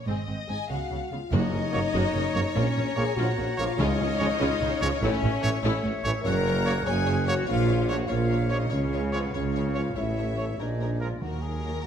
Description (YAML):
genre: cinematic, heroic adventure film score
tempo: 97 BPM (dotted quarters)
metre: 6/8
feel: straight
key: F# major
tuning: A4 = 440 Hz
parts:
  - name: warm symphonic violin section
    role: melody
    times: 0.0-11.9 s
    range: A#4 to F5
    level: -36 LUFS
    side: left 5 dB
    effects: none
  - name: warm symphonic violin section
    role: second line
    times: 0.1-11.8 s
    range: C4 to A#5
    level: -38 LUFS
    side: left 4 dB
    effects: none
  - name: warm symphonic viola section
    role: accompaniment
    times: 0.1-11.9 s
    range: Eb3 to A4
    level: -37 LUFS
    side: equal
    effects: none
  - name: dark symphonic cello section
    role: bass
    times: 0.1-11.9 s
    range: Eb2 to Db3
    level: -32 LUFS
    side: right 1 dB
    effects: none
  - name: dark symphonic double bass section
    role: bass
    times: 0.1-11.9 s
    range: F#1 to Eb2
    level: -30 LUFS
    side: right 2 dB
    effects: none
  - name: mellow hollow concert flute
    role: second line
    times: 0.5-11.9 s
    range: B4 to A#5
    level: -38 LUFS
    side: left 4 dB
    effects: none
  - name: warm French horn section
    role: sustained chords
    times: 0.5-11.7 s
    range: Bb3 to A#4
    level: -32 LUFS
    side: left 5 dB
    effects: none
  - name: clear clarinet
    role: second line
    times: 1.3-11.9 s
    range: D#4 to C#5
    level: -39 LUFS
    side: left 2 dB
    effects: none
  - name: warm oboe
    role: second line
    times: 1.3-11.0 s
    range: E5 to A#5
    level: -39 LUFS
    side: equal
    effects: none
  - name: clear tuba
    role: bass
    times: 1.3-11.1 s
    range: F#1 to C#2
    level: -32 LUFS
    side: right 3 dB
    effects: none
  - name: timpani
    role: percussion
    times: 1.3-4.4, 11.2-11.8 s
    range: F#2 to Eb3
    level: -32 LUFS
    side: left 1 dB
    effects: none
  - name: clear trombone section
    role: sustained chords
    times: 1.7-11.7 s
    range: Eb3 to A#3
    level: -40 LUFS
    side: right 3 dB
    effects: none
  - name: warm trumpet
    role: stabs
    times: 1.7-11.1 s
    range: A#4 to C#5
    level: -35 LUFS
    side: right 1 dB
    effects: none
room: moderate scoring stage reverb, RT60 1.9 s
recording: none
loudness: -24 LUFS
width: side -8 dB against mid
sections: 0.0-1.3 A section; 1.3-11.2 B section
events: none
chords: 0.1 Ab; 0.7 Db7; 1.3 F#; 2.6 A#m; 3.8 C#; 5.0 A; 6.3 F#; 7.5 A#m; 8.7 C#; 10.0 A; 10.6 A#7; 11.2 Ebm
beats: | 0.08 0.70 | 1.32 1.94 | 2.56 3.18 | 3.79 4.41 | 5.02 5.64 | 6.25 6.87 | 7.48 8.10 | 8.72 9.33 | 9.96 10.58 | 11.21 11.84